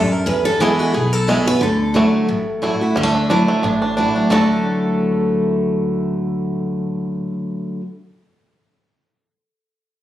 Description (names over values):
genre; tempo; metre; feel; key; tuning
bluegrass; 178 BPM; 4/4; swing 55% on 8ths; D major; A4 = 440 Hz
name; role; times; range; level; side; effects
picked steel-string acoustic guitar; melody; 0.0-7.3 s; F#4 to B4; -22 LUFS; left 1 dB; none
picked steel-string acoustic guitar; accompaniment; 0.0-7.8 s; E2 to F#4; -18 LUFS; equal; none
upright bass; bass; 0.3-7.3 s; A1 to E2; -25 LUFS; equal; none
bluegrass banjo; melody; 0.6-7.3 s; G3 to A4; -21 LUFS; right 2 dB; none
room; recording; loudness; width
light reverb; recorded on a phone in the room, studio reverb; -16 LUFS; side -12 dB against mid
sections
0.0-3.0 A section; 3.0-4.3 B section; 4.3-7.0 C section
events
none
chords
0.3 Eadd9; 1.6 Dadd9